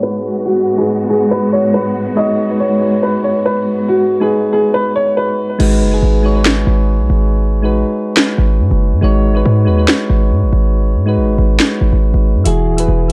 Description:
hip hop, drill; 140 BPM; 4/4; half-time; G# minor; A4 = 445 Hz
clear upright piano; melody; 0.0-5.6 s; F#4 to D#5; -17 LUFS; equal; low-pass filter, delay
soft electric-piano-like synth keys; accompaniment; 0.0-13.1 s; E3 to C#5; -20 LUFS; equal; chorus, tremolo, low-pass filter
dark symphonic string section; sustained chords; 0.0-5.6 s; G#2 to F#4; -22 LUFS; equal; low-pass filter
hard-hitting 808-style bass; bass; 5.6-13.1 s; D#1 to G#2; -15 LUFS; equal
drill drum kit; drums; 5.6-13.1 s; crash cymbal, handclaps, hi-hat, snare drum; -17 LUFS; equal; overdrive, vintage 12-bit sampler grit
digital ambience; dark, warm production; -14 LUFS; mono
0.0-5.6 A section; 5.6-13.1 B section
filter sweep 0.0-5.6; hi-hats muted 5.6-12.5
0.0 G#m7; 12.5 Eadd9
0.03 | 0.46 0.88 1.31 1.74 | 2.17 2.60 3.03 3.46 | 3.88 4.31 4.74 5.17 | 5.60 6.03 6.46 6.88 | 7.31 7.74 8.17 8.60 | 9.03 9.46 9.88 10.31 | 10.74 11.17 11.60 12.03 | 12.46 12.88

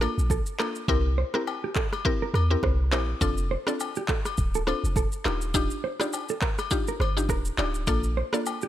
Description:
afrobeats; 103 BPM; 4/4; swing 58% on 16ths; F major; A4 = 440 Hz
mallet-like synth pluck; accompaniment; 0.0-8.5 s; Bb3 to Bb4; -30 LUFS; left 2 dB; chorus
clean electric guitar; riff; 0.0-8.7 s; G4 to D5; -33 LUFS; right 5 dB; digital delay
warm 808-style bass; bass; 0.0-8.2 s; D1 to E2; -26 LUFS; equal
afro-pop drum kit; drums; 0.0-8.7 s; handclaps, kick drum, rim click, shaker; -29 LUFS; equal
agogo bells and woodblock; percussion; 0.0-8.6 s; -36 LUFS; left 8 dB
little or no reverb; -24 LUFS; side -12 dB against mid
0.0-8.7 A section
hi-hats muted 0.9-3.2
0.0 Bbmaj7; 0.9 C7; 3.2 F6; 5.3 Ebmaj9; 7.9 Bbmaj7
0.30 | 0.88 1.47 2.05 2.63 | 3.21 3.80 4.38 4.96 | 5.54 6.13 6.71 7.29 | 7.87 8.46

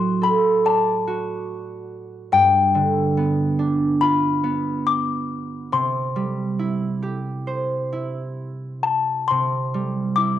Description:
children's music, lullaby; 70 BPM; 4/4; rubato; C major; A4 = 440 Hz
music box; melody; 0.0-10.4 s; G5 to D6; -20 LUFS; left 6 dB; cassette tape
concert harp; accompaniment; 0.0-10.4 s; G2 to D5; -22 LUFS; right 3 dB; cassette tape
light reverb; home recording on cassette; -19 LUFS; side -11 dB against mid
0.0-9.3 A section; 9.3-10.4 B section
0.0 D/A; 2.3 G7; 5.7 C
0.65 1.49 | 2.33 3.16 4.01 4.86 | 5.71 6.58 7.46 8.38 | 9.28 10.16

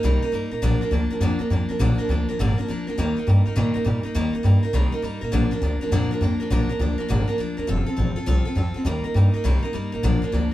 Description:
rockabilly; 204 BPM; 4/4; swing 65% on 8ths; Bb major; A4 = 439 Hz
picked steel-string acoustic guitar; accompaniment; 0.0-10.5 s; Bb2 to Bb4; -24 LUFS; equal
upright bass; bass; 0.0-10.5 s; F1 to Bb2; -21 LUFS; equal
moderate small room reverb, RT60 0.5 s; band playing live in one room; -20 LUFS; side -14 dB against mid
0.0-10.5 A section
0.0 Eb; 0.6 Bb; 3.0 Eb; 5.3 Bb; 7.7 F; 8.9 Eb; 10.0 Bb
0.03 0.33 | 0.62 0.92 1.21 1.50 | 1.80 2.09 2.39 2.68 | 2.98 3.27 3.56 3.86 | 4.15 4.45 4.74 5.04 | 5.33 5.62 5.92 6.21 | 6.50 6.80 7.09 7.39 | 7.68 7.98 8.27 8.56 | 8.86 9.15 9.45 9.74 | 10.03 10.33

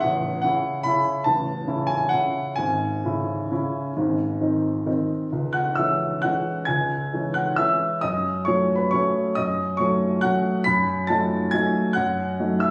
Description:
classical, piano waltz; 126-152 BPM; 3/4; rubato; C# minor; A4 = 441 Hz
warm baby grand piano; solo; 0.0-12.7 s; A0 to B6; -23 LUFS; equal
wet recital hall reverb, RT60 1.3 s; recorded on a phone in the room, studio reverb, compression; -23 LUFS; mono
0.0-5.3 A section; 5.3-12.7 B section
0.0 A; 2.6 C#m/G#; 4.0 G#; 5.3 C#m; 8.0 F#m; 10.7 D#dim/F#
| 0.03 0.44 0.86 | 1.26 1.67 2.12 | 2.58 3.04 3.51 | 3.96 4.41 4.87 | 5.33 5.78 6.24 | 6.69 7.13 7.59 | 8.03 8.48 8.93 | 9.37 9.80 10.23 | 10.66 11.08 11.52 | 11.96 12.40

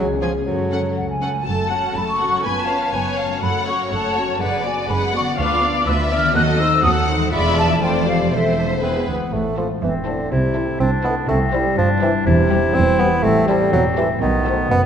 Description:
cinematic, playful, whimsical film cue; 122 BPM; 2/4; straight; F# minor, A minor from 5.4 s; A4 = 440 Hz
warm bassoon; accompaniment; 0.0-1.0, 8.8-14.8 s; C3 to C4; -20 LUFS; right 2 dB
mellow French horn section; sustained chords; 0.0-1.2, 9.6-14.6 s; C4 to C5; -29 LUFS; left 4 dB
concert harp; arpeggios; 0.0-14.9 s; F#2 to B4; -25 LUFS; left 5 dB
clear studio double bass section; bass; 0.0-14.9 s; E1 to F#2; -25 LUFS; right 3 dB
rich studio cello section; bass; 0.0-14.9 s; D2 to F#3; -25 LUFS; right 2 dB
warm studio violin section; melody; 0.2-14.6 s; A4 to A5; -28 LUFS; left 3 dB
warm studio violin section; second line; 0.2-14.6 s; G4 to F#5; -27 LUFS; left 3 dB
warm studio viola section; accompaniment; 0.2-14.6 s; F#3 to C#5; -27 LUFS; right 1 dB
hollow flute section; second line; 1.0-8.8 s; E5 to F#6; -21 LUFS; left 2 dB
bright clarinet; second line; 9.8-14.9 s; B3 to E4; -23 LUFS; left 2 dB
wet scoring stage reverb, RT60 2.0 s; nothing above 10.6 kHz; -16 LUFS; side -8 dB against mid
0.0-1.5 A section; 1.5-9.3 B section; 9.3-14.9 C section
0.5 F#m; 2.5 C#7/F#; 3.4 F#m; 4.4 G#m7b5/F#; 5.4 Bdim/D; 6.4 D#dim7; 7.3 E7b9; 7.8 F; 8.3 Am/E; 8.8 E; 9.3 Am; 10.3 Am/C; 11.3 C; 12.3 C/E; 13.2 Am7; 14.2 B7b9
| 0.47 0.97 | 1.47 1.96 | 2.45 2.94 | 3.43 3.92 | 4.41 4.89 | 5.38 5.87 | 6.36 6.84 | 7.33 7.82 | 8.32 8.83 | 9.33 9.82 | 10.31 10.80 | 11.29 11.78 | 12.26 12.75 | 13.24 13.73 | 14.22 14.71

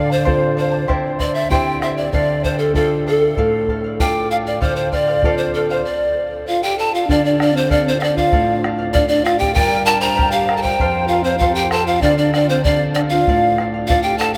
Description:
andean folk, Andean ensemble; 97 BPM; 2/4; straight; D minor; A4 = 440 Hz
breathy pan flute; melody; 0.0-14.4 s; A4 to Bb5; -20 LUFS; equal
breathy reedy pan flute; second line; 0.0-14.4 s; C4 to D6; -25 LUFS; equal
charango; accompaniment; 0.0-14.4 s; E4 to Bb5; -29 LUFS; equal
nylon-string guitar; accompaniment; 0.0-14.4 s; F2 to A4; -25 LUFS; equal
bombo; percussion; 0.3-14.3 s; -26 LUFS; equal
wet cathedral reverb, RT60 6.3 s; in a vast, echoing space; -17 LUFS; mono
0.0-7.1 A section; 7.1-14.4 B section
stop 5.8-7.1
0.0 F/D; 0.9 C/D; 2.1 Dm; 4.6 F/D; 5.8 N.C.; 7.1 Dm; 9.6 Gm; 10.8 F; 12.0 Dm
0.27 | 0.89 1.51 | 2.13 2.75 | 3.37 3.99 | 4.61 5.23 | 5.85 6.47 | 7.09 7.71 | 8.32 8.94 | 9.56 10.18 | 10.80 11.42 | 12.04 12.65 | 13.27 13.89

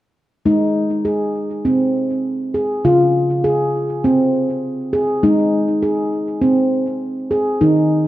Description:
world meditative, meditative tuned percussion; 101 BPM; 4/4; straight; Ab major; A4 = 439 Hz
handpan; solo; 0.5-8.1 s; Db3 to Ab4; -15 LUFS; equal; tape echo
wet echo chamber reverb, RT60 1.6 s, small room ambience; worn, warbling old tape, cassette tape, warbly pitch drift; -15 LUFS; side -14 dB against mid
0.5-8.1 A section
0.5 Ab; 2.8 Db; 5.2 Ab
| 0.46 1.06 1.66 2.25 | 2.85 3.44 4.04 4.64 | 5.23 5.83 6.42 7.02 | 7.62

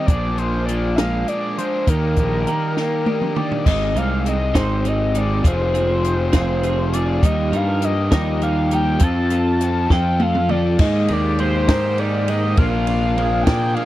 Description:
indie rock; 67 BPM (dotted quarters); 6/8; straight; A4 = 440 Hz
overdriven synth lead; melody; 0.0-13.9 s; Bb4 to A5; -23 LUFS; left 1 dB; chorus
raw garage guitar; riff; 0.0-13.9 s; Eb3 to Bb4; -26 LUFS; left 6 dB; overdrive
twelve-string electric guitar; riff; 0.0-13.9 s; Bb2 to Bb4; -25 LUFS; right 4 dB; lush chorus
fuzz picked electric bass; bass; 0.1-13.8 s; F1 to Bb2; -20 LUFS; equal; overdrive
compact cocktail drum kit; drums; 0.1-13.9 s; crash cymbal, hi-hat, kick drum, ride cymbal, snare drum, toms; -19 LUFS; equal
clear trumpet; second line; 10.8-13.9 s; F4 to Ab4; -31 LUFS; right 4 dB
tonewheel organ; sustained chords; 10.8-13.9 s; Ab2 to Eb4; -31 LUFS; equal
light reverb; dry, close 1970s-style studio recording; -16 LUFS; side -14 dB against mid
0.0-3.7 A section; 3.7-10.8 B section; 10.8-13.9 C section
drum fill 2.8-3.7, 9.9-10.8
0.1 Bb7; 1.9 Ebmaj7; 3.7 Abmaj7; 5.4 Fm; 7.2 Ebadd9; 9.0 F; 10.8 Absus2; 12.6 Bbadd9
| 0.08 0.97 | 1.87 2.76 | 3.66 4.55 | 5.44 6.34 | 7.23 8.12 | 9.02 9.91 | 10.80 11.69 | 12.58 13.47

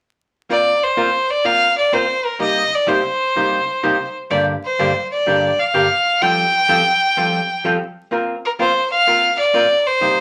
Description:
country; 126 BPM; 4/4; swing 69% on 8ths; Bb major; A4 = 440 Hz
clear fiddle; melody; 0.5-10.2 s; Bb4 to G5; -18 LUFS; equal
archtop guitar, miked and amplified; accompaniment; 0.5-10.2 s; G2 to Bb4; -22 LUFS; equal
wet studio reverb, RT60 0.5 s; vinyl crackle; -17 LUFS; mono
0.5-8.1 A section; 8.1-10.2 B section
0.5 Bbsus2; 2.4 Cm7; 4.3 Gm; 6.2 Fadd9; 8.1 Bbsus2
| 0.49 0.97 1.45 1.92 | 2.40 2.88 3.35 3.83 | 4.30 4.78 5.26 5.73 | 6.21 6.68 7.16 7.63 | 8.11 8.59 9.06 9.54 | 10.01

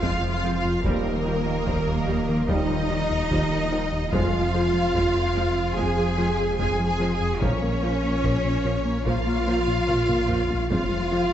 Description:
cinematic, hybrid orchestral and electronic film score; 73 BPM; 4/4; straight; F minor; A4 = 441 Hz
warm symphonic violin section; melody; 0.0-11.3 s; Bb4 to Ab5; -33 LUFS; left 2 dB
rich symphonic violin section; second line; 0.0-11.3 s; Bb4 to Ab5; -33 LUFS; left 2 dB
warm symphonic viola section; accompaniment; 0.0-11.2 s; F3 to C4; -35 LUFS; right 1 dB
analog string pad; sustained chords; 0.0-11.3 s; F3 to Eb5; -34 LUFS; equal; ensemble chorus
mellow French horn section; sustained chords; 0.0-11.3 s; Bb3 to Ab4; -29 LUFS; left 2 dB
smooth synth bass; riff; 0.0-11.2 s; Eb2 to Bb3; -28 LUFS; left 2 dB
warm sub bass; bass; 0.0-11.3 s; Eb1 to Bb1; -32 LUFS; equal
warm symphonic cello section; bass; 0.0-11.3 s; Bb3 to Ab4; -29 LUFS; right 2 dB
warm symphonic double bass section; bass; 0.0-11.3 s; Bb1 to F2; -30 LUFS; right 3 dB
taiko ensemble; drums; 0.0-11.3 s; -31 LUFS; equal
impact; sound effects; 0.0-0.8 s; barely audible
warm trombone section; sustained chords; 0.8-11.3 s; F3 to C4; -35 LUFS; right 4 dB
moderate scoring stage reverb, RT60 1.6 s; nothing above 7.9 kHz; -21 LUFS; side -10 dB against mid
0.0-11.3 A section
impact 0.0-0.8; drum fill 9.9-10.7
0.0 Fm; 0.8 Ebadd9; 4.1 Fm; 7.4 Bbm; 10.7 Fm
0.02 | 0.84 1.66 2.48 3.31 | 4.13 4.95 5.77 6.59 | 7.42 8.24 9.06 9.88 | 10.70

